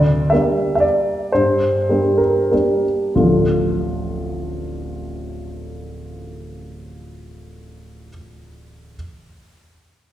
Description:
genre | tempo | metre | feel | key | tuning
classical, piano waltz | 87-128 BPM | 3/4 | rubato | D minor | A4 = 443 Hz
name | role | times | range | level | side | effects
warm baby grand piano | solo | 0.0-9.0 s | D1 to E5 | -17 LUFS | equal | none
room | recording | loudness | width
wet recital hall reverb, RT60 1.6 s | heard from further back in the room | -15 LUFS | side -12 dB against mid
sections
0.0-3.2 A section; 3.2-6.8 B section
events
slowing down 0.0-3.2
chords
0.0 Gm/D; 3.2 Dm

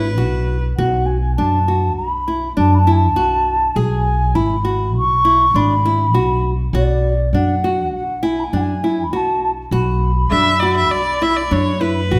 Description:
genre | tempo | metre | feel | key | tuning
contemporary instrumental, contemporary | 101 BPM | 5/4 | straight | B dorian | A4 = 441 Hz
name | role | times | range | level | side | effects
rich viola | second line | 0.0-0.6, 10.3-12.2 s | B4 to E5 | -22 LUFS | equal | none
nylon-string guitar | arpeggios | 0.0-12.2 s | D4 to G#4 | -24 LUFS | equal | none
upright bass | bass | 0.0-12.2 s | G#1 to F#2 | -21 LUFS | equal | none
mellow wooden flute | melody | 0.8-12.1 s | D5 to C#6 | -21 LUFS | equal | none
room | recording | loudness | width
moderate recital hall reverb, RT60 1.5 s | none | -17 LUFS | mono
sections
0.0-12.2 A section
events
none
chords
0.0 Eadd9/G# (rootless); 0.8 Bm; 3.8 C#m7; 6.7 Bm

